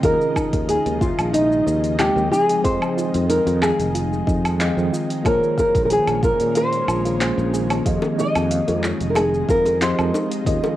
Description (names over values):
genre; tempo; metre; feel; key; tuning
sunset chillout; 92 BPM; 4/4; straight; F minor; A4 = 440 Hz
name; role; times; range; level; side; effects
nylon-string guitar; melody; 0.0-10.3 s; Eb4 to Eb5; -20 LUFS; equal; analog delay
mellow tine electric piano; accompaniment; 0.0-10.8 s; Eb3 to G5; -26 LUFS; equal; medium stereo tremolo, auto-pan, cassette tape, analog delay
ethereal airy pad; sustained chords; 0.0-10.8 s; Db3 to Eb4; -28 LUFS; equal; ensemble chorus, built-in reverb, cassette tape
soft round pluck; arpeggios; 0.0-10.6 s; Eb4 to Ab5; -31 LUFS; right 2 dB; chorus, cassette tape, analog delay
sustaining fretless electric bass; bass; 0.0-10.6 s; F1 to Bb2; -24 LUFS; equal; tube saturation
deep house drum kit; drums; 0.0-10.8 s; handclaps, hi-hat, shaker, woodblock; -27 LUFS; right 1 dB; studio ambience, cassette tape
electronic kick drum; drums; 0.0-10.6 s; none; -23 LUFS; equal; studio ambience, cassette tape
bongos; percussion; 8.0-10.8 s; none; -26 LUFS; left 2 dB; none
room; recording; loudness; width
light reverb, digital ambience; home recording on cassette; -17 LUFS; side -14 dB against mid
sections
0.0-10.8 A section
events
none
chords
0.0 Eb9sus4; 2.3 Fm7; 5.3 Bbm9; 7.9 Fm7